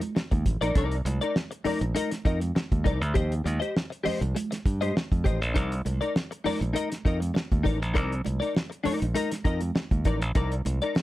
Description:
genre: funk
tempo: 100 BPM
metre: 4/4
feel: straight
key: C dorian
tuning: A4 = 438 Hz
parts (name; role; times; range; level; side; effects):
- semi-hollow electric guitar; accompaniment; 0.0-11.0 s; Eb4 to Eb5; -29 LUFS; left 4 dB; analog chorus
- cloth-damped thuddy drum kit; drums; 0.0-11.0 s; hi-hat, kick drum, snare drum; -27 LUFS; equal; none
- congas; percussion; 0.0-11.0 s; none; -36 LUFS; right 5 dB; none
- modern bright fingered electric bass; bass; 0.3-10.8 s; A1 to G2; -28 LUFS; equal; none
room: light reverb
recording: none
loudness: -24 LUFS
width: side -16 dB against mid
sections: 0.0-11.0 A section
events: none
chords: 0.0 Cm9; 3.2 Eb6; 5.6 Cm9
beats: 0.16 | 0.76 1.36 1.96 2.56 | 3.16 3.76 4.36 4.96 | 5.56 6.16 6.76 7.36 | 7.96 8.56 9.16 9.76 | 10.36 10.96

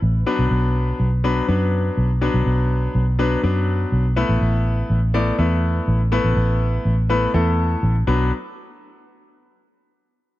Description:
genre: dance-pop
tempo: 123 BPM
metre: 4/4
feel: straight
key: B minor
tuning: A4 = 444 Hz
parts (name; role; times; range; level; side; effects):
- vintage muted fingered electric bass; bass; 0.0-8.3 s; A1 to F#2; -18 LUFS; equal; none
- clear concert grand piano; accompaniment; 0.3-8.3 s; F#3 to D5; -22 LUFS; left 2 dB; none
room: small room ambience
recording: none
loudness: -17 LUFS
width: side -16 dB against mid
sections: 0.3-8.1 A section; 8.1-10.0 B section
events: none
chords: 0.3 Bm; 4.2 Asus2; 8.1 Bm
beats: | 0.27 0.75 1.24 1.73 | 2.22 2.70 3.19 3.68 | 4.17 4.66 5.14 5.63 | 6.12 6.61 7.09 7.58 | 8.07

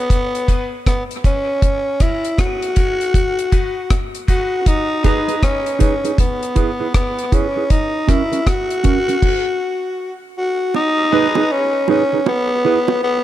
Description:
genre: dub reggae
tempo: 79 BPM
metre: 4/4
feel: swing 64% on 16ths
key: G# minor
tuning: A4 = 441 Hz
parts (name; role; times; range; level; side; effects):
- growling tenor saxophone; melody; 0.0-13.2 s; B3 to F#4; -18 LUFS; left 1 dB; dub echo
- mellow electric guitar; accompaniment; 0.0-12.8 s; C#4 to B4; -22 LUFS; right 7 dB; high-pass filter, dub echo
- deep reggae drum kit; drums; 0.1-9.4 s; crash cymbal, hi-hat, kick drum, rim click; -16 LUFS; equal; none
- bright grand piano; stabs; 0.5-5.3, 11.1-11.4 s; C#4 to B4; -29 LUFS; left 3 dB; high-pass filter, dub echo
- bongos; percussion; 10.7-13.0 s; none; -24 LUFS; right 7 dB; dub echo
room: light reverb, studio ambience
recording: dark, warm production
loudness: -15 LUFS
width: side -13 dB against mid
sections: 0.0-10.7 A section; 10.7-13.2 B section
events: stop 9.2-10.7; part muted 10.7-13.2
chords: 0.1 E; 1.6 F#; 3.1 B; 4.7 G#m; 6.2 E; 7.7 F#; 9.2 N.C.; 10.7 G#m; 12.3 E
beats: 0.10 0.86 | 1.62 2.38 3.14 3.90 | 4.66 5.42 6.18 6.94 | 7.70 8.46 9.22 9.98 | 10.74 11.50 12.26 13.02

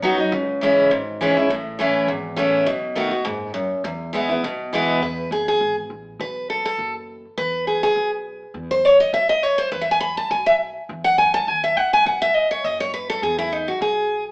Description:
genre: bluegrass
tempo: 204 BPM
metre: 4/4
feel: swing 54% on 8ths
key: E major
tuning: A4 = 445 Hz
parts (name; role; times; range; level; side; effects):
- picked steel-string acoustic guitar; accompaniment; 0.0-14.2 s; E2 to B5; -18 LUFS; equal; none
- upright bass; bass; 0.0-14.3 s; F#1 to E2; -36 LUFS; equal; none
room: wet large studio reverb, RT60 1.0 s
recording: band playing live in one room, AM radio sound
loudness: -18 LUFS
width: side -29 dB against mid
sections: 0.0-5.0 A section; 5.0-14.3 B section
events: steel-string acoustic guitar solo 5.0-14.3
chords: 0.3 C#m; 1.5 A; 2.7 B7; 3.8 E; 6.2 B5; 7.4 E; 12.1 B5; 13.2 E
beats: 0.03 | 0.32 0.61 0.91 1.20 | 1.50 1.79 2.08 2.38 | 2.67 2.97 3.26 3.55 | 3.85 4.14 4.43 4.73 | 5.02 5.32 5.61 5.90 | 6.20 6.49 6.78 7.08 | 7.37 7.66 7.96 8.25 | 8.54 8.84 9.13 9.42 | 9.72 10.01 10.30 10.60 | 10.89 11.18 11.47 11.77 | 12.06 12.35 12.64 12.94 | 13.23 13.52 13.81 14.11

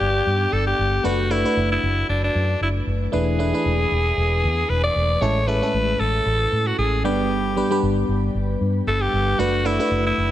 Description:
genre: 1980s-style pop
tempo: 115 BPM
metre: 4/4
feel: swing 55% on 16ths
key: unclear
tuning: A4 = 440 Hz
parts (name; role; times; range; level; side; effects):
- raspy alto saxophone; melody; 0.0-10.3 s; D4 to D5; -22 LUFS; left 1 dB; shimmer reverb
- FM electric piano; accompaniment; 0.0-10.3 s; G2 to D5; -24 LUFS; equal; chorus, phaser, shimmer reverb
- vintage muted fingered electric bass; bass; 0.0-10.3 s; E1 to A2; -23 LUFS; equal; none
room: moderate lush hall reverb, RT60 2.4 s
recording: none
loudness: -18 LUFS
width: side -12 dB against mid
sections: 0.0-10.3 A section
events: none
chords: 0.0 G; 1.0 D6/F#; 3.1 E7sus4; 5.2 Amaj7; 7.0 G; 9.4 D6/F#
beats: 0.00 0.53 | 1.05 1.57 2.09 2.61 | 3.13 3.65 4.18 4.70 | 5.22 5.74 6.26 6.79 | 7.31 7.83 8.35 8.87 | 9.39 9.92

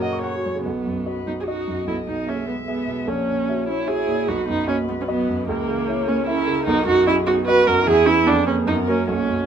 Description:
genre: quick classical-period movement for piano quartet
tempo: 150 BPM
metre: 3/4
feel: straight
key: B major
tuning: A4 = 439 Hz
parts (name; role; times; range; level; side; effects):
- muted violin; melody; 0.0-9.5 s; F#4 to E5; -30 LUFS; left 10 dB; none
- muted cello; second line; 0.0-9.5 s; A#2 to F#4; -26 LUFS; right 5 dB; none
- muted viola; accompaniment; 0.0-9.5 s; A#3 to D#5; -21 LUFS; right 3 dB; none
- warm grand piano; accompaniment; 0.0-9.5 s; A#1 to C#6; -25 LUFS; equal; none
room: moderate studio reverb, RT60 0.6 s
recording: minimal, uncompressed stereo recording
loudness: -18 LUFS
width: side -8 dB against mid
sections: 0.7-9.5 A section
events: none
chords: 0.0 F#; 0.7 B; 1.9 E/B; 3.1 F#7/A#; 4.3 B; 5.5 A#dim/C#; 6.7 B; 7.9 E; 8.3 Fdim7; 8.7 F#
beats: 0.24 | 0.66 1.06 1.47 | 1.88 2.28 2.68 | 3.08 3.49 3.89 | 4.29 4.69 5.09 | 5.49 5.88 6.27 | 6.67 7.07 7.47 | 7.87 8.27 8.68 | 9.09

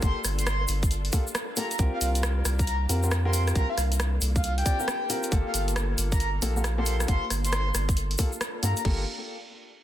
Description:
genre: UK garage, two-step garage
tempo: 136 BPM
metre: 4/4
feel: swing 64% on 16ths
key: G minor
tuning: A4 = 440 Hz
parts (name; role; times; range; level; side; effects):
- breathy flute-like synth lead; melody; 0.0-8.8 s; F5 to C6; -33 LUFS; equal; wide subtle chorus, digital delay
- soft string machine; sustained chords; 0.0-9.1 s; Bb3 to A4; -40 LUFS; equal; phaser, ensemble chorus, sidechain pumping
- dark baby grand piano; stabs; 0.0-9.0 s; Bb3 to D5; -34 LUFS; left 1 dB; digital delay
- saturated sub bass; bass; 0.0-9.1 s; G1 to G2; -26 LUFS; equal; none
- garage drum kit; drums; 0.0-9.0 s; crash cymbal, kick drum; -26 LUFS; equal; none
- punchy analog drum machine; drums; 0.0-8.8 s; hi-hat, rim click; -32 LUFS; equal; soft clipping on snare
- egg shaker; percussion; 0.0-8.8 s; none; -34 LUFS; left 1 dB; none
room: light reverb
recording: dense, heavily limited modern master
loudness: -24 LUFS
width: side -12 dB against mid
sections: 0.0-8.8 A section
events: drop 0.0-8.8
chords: 0.0 Gm9; 1.8 C7sus4; 5.3 Gm9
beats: | 0.03 0.47 0.91 1.35 | 1.79 2.23 2.67 3.11 | 3.55 4.00 4.44 4.88 | 5.32 5.76 6.20 6.64 | 7.08 7.53 7.97 8.41 | 8.85

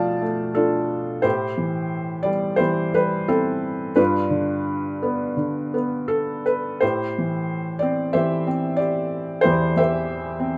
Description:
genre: classical, lyrical solo piano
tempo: 79-96 BPM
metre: 4/4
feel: rubato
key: A minor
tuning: A4 = 440 Hz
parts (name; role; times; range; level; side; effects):
- felt-muted upright piano; solo; 0.0-10.6 s; E2 to A5; -23 LUFS; equal; none
room: light reverb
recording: none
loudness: -23 LUFS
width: mono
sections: 0.0-6.8 A section; 6.8-10.6 A section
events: none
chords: 0.0 Bm7b5; 1.2 Am7; 4.0 G7; 6.8 Am7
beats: 0.57 | 1.25 1.93 2.60 3.28 | 3.96 4.66 5.37 6.10 | 6.82 7.49 8.14 8.79 | 9.44 10.09

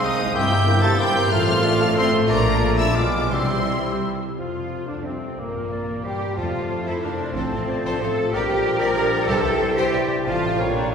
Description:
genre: classical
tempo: 183 BPM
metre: 3/4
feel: rubato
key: F major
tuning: A4 = 440 Hz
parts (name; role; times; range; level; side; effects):
- warm symphonic violin section; melody; 0.0-10.9 s; Bb3 to A6; -29 LUFS; left 3 dB; none
- clear clarinet; second line; 0.0-10.9 s; A4 to F5; -31 LUFS; left 1 dB; none
- mellow small flute group; second line; 0.0-10.9 s; C4 to F6; -34 LUFS; left 3 dB; none
- rich studio violin section; second line; 0.0-10.9 s; Bb3 to A5; -30 LUFS; left 1 dB; none
- warm cor anglais; second line; 0.0-10.9 s; Bb3 to D5; -30 LUFS; right 2 dB; none
- rich symphonic viola section; accompaniment; 0.0-10.9 s; G3 to Bb4; -29 LUFS; equal; none
- warm bassoon; accompaniment; 0.0-10.9 s; Bb2 to Bb3; -31 LUFS; equal; none
- dark trombone section; sustained chords; 0.0-10.9 s; Bb2 to Bb3; -31 LUFS; right 3 dB; none
- mellow French horn section; sustained chords; 0.0-10.9 s; Bb3 to Bb4; -30 LUFS; left 2 dB; none
- concert harp; arpeggios; 0.0-10.9 s; F2 to Ab4; -30 LUFS; left 5 dB; none
- rich symphonic cello section; bass; 0.0-10.9 s; G2 to Bb4; -27 LUFS; right 2 dB; none
- rich symphonic double bass section; bass; 0.0-10.9 s; G1 to G2; -27 LUFS; right 1 dB; none
- timpani; percussion; 3.3-3.8, 6.4-6.8 s; F2 to C3; -32 LUFS; equal; none
room: wet concert hall reverb, RT60 1.8 s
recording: recorded in a church or concert hall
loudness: -19 LUFS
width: side -6 dB against mid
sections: 0.0-4.4 A section; 4.4-10.9 B section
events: none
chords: 0.4 C7/G; 1.3 F/A; 2.3 Bbmaj7; 3.0 Bdim7; 3.3 C; 4.4 F; 5.4 C7/Bb; 6.4 F; 7.4 F/A; 8.3 Gm7/Bb; 9.3 C; 10.3 F/A; 10.6 Gm7b5/Bb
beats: 0.03 | 0.35 0.68 1.00 | 1.32 1.64 1.96 | 2.29 2.62 2.96 | 3.31 3.67 4.03 | 4.38 4.72 5.05 | 5.38 5.72 6.05 | 6.38 6.71 7.03 | 7.36 7.69 8.01 | 8.34 8.66 8.97 | 9.29 9.62 9.95 | 10.27 10.60 10.93

